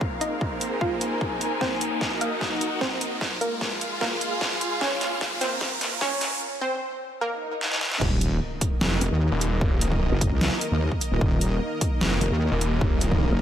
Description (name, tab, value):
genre	heavy wobble dubstep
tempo	150 BPM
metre	4/4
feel	half-time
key	unclear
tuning	A4 = 440 Hz
part	wide unison pluck	melody	0.0-7.9 s	Bb3 to F5	-30 LUFS	right 1 dB	digital delay
part	supersaw pad	sustained chords	0.0-13.4 s	Eb3 to F5	-32 LUFS	equal	sidechain pumping
part	electronic kick drum	drums	0.0-13.2 s	none	-27 LUFS	equal	none
part	riser, swell and impact	sound effects	0.0-9.6 s	none	-32 LUFS	equal	none
part	muted chamber string section	texture	0.0-6.4 s	C4 to Ab5	-32 LUFS	left 1 dB	sidechain pumping
part	dubstep drum kit	drums	0.2-13.1 s	crash cymbal, hi-hat, snare drum	-28 LUFS	equal	overdrive, high-pass filter on hats, high-pass filter on snare, high-pass filter on cymbals, high-pass filter on room
part	wobble bass	bass	8.0-13.4 s	Eb1 to Eb2	-23 LUFS	equal	chorus, overdrive
part	snarling distorted saw bass	bass	8.8-13.3 s	Eb1 to F1	-25 LUFS	equal	distortion, overdrive
room	light reverb, digital ambience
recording	high-pass filter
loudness	-23 LUFS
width	side -10 dB against mid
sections	0.0-8.0 A section; 8.0-13.4 B section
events	build-up 0.0-8.0; riser 0.0-6.4; filter sweep on synth pluck 0.0-8.0; filter sweep 0.0-8.0; drum fill 1.6-6.4, 7.6-8.0; break 6.4-8.0; swell 7.4-8.0; drop 8.0-13.4; impact 8.0-9.6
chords	0.0 Abadd9; 1.6 Ebm; 3.2 Fmadd11/Ab; 4.8 Bbm; 6.4 N.C.; 8.0 Eb5